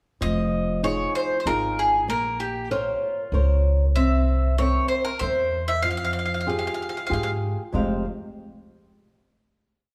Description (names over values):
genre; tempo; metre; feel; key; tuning
italian folk, Italian serenade; 95 BPM; 3/4; straight; F minor; A4 = 440 Hz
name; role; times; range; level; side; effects
bowl-back mandolin; melody; 0.2-7.3 s; F4 to F5; -27 LUFS; equal; none
flamenco guitar; accompaniment; 0.2-8.0 s; F2 to F5; -30 LUFS; equal; none
upright bass; bass; 0.2-8.0 s; F1 to Ab2; -27 LUFS; equal; none
room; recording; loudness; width
moderate recital hall reverb, RT60 1.7 s; recorded in a church or concert hall; -24 LUFS; mono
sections
0.2-7.7 A section; 7.7-9.6 final chord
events
none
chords
0.2 Fm7; 2.1 Bbmadd9; 3.9 C7; 5.8 Fmadd9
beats
| 0.21 0.83 1.46 | 2.08 2.70 3.32 | 3.95 4.58 5.21 | 5.84 6.47 7.11 | 7.74